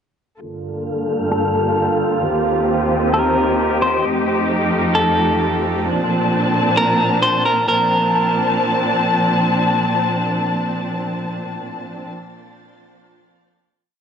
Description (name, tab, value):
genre	hip hop, atmospheric cloud-rap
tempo	free time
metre	none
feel	none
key	Bb major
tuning	A4 = 438 Hz
part	muted studio string section	sustained chords	0.4-12.1 s	Eb2 to A5	-18 LUFS	equal	low-pass filter
part	wind-like tuned noise texture	texture	1.0-5.8 s	A3 to F5	-24 LUFS	equal	built-in reverb
part	clean electric guitar	melody	1.3-9.0 s	A4 to C5	-20 LUFS	equal	spring reverb, low-pass filter, tape echo
room	light reverb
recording	dry, gritty hardware recording, nothing above 10.8 kHz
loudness	-15 LUFS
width	side -7 dB against mid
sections	0.4-7.7 breakdown; 7.7-11.3 final chord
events	filter sweep 0.4-7.7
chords	0.4 Gm7; 2.2 Eb6; 4.0 F7; 5.9 Bbmaj7